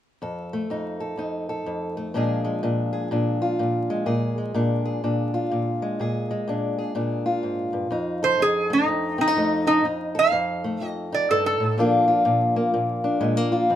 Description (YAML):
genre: acoustic country blues, solo or duo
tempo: 125 BPM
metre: 4/4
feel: swing 62% on 8ths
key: unclear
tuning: A4 = 440 Hz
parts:
  - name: fingerpicked old ladder-braced acoustic guitar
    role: accompaniment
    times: 0.2-13.8 s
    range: F2 to A4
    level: -23 LUFS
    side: left 1 dB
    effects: none
  - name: lap resonator guitar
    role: melody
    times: 8.2-11.8 s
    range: Eb4 to F5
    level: -20 LUFS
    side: right 2 dB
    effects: none
room: moderate small room reverb, RT60 0.5 s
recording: minimal, uncompressed stereo recording, vinyl crackle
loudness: -21 LUFS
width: side -11 dB against mid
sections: 0.2-7.9 A section; 7.9-13.8 B section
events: none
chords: 0.2 F7; 2.1 Bb7; 7.9 F7; 11.8 Bb